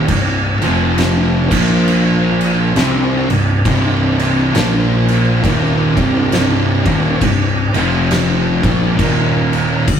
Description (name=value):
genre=stoner and doom metal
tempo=67 BPM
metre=4/4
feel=swing 60% on 8ths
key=C minor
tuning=A4 = 440 Hz
part: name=bright tonewheel organ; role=sustained chords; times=0.0-9.9 s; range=F3 to G5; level=-28 LUFS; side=equal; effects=slow rotary speaker, chorus vibrato
part: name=cranked stack guitar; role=riff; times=0.0-9.9 s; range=C2 to C4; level=-20 LUFS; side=equal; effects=overdrive
part: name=thick fuzz guitar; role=riff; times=0.0-9.9 s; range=C2 to C4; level=-18 LUFS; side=left 2 dB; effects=distortion
part: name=thick fuzz guitar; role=riff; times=0.0-9.9 s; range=C2 to C4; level=-20 LUFS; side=right 3 dB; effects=distortion
part: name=fuzz fingered electric bass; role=bass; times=0.0-9.8 s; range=C1 to C2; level=-21 LUFS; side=equal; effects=overdrive
part: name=oversized low-tuned drum kit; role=drums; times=0.1-10.0 s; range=crash cymbal, kick drum, snare drum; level=-17 LUFS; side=right 1 dB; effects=none
room=wet booth ambience, RT60 0.2 s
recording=rough rehearsal-room recording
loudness=-12 LUFS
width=side -8 dB against mid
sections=0.0-10.0 A section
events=none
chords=0.0 C5; 0.5 F5; 1.4 Bb5; 2.8 C5; 4.5 Bb5; 5.4 Cm; 7.7 F5; 8.5 C5; 9.0 Eb5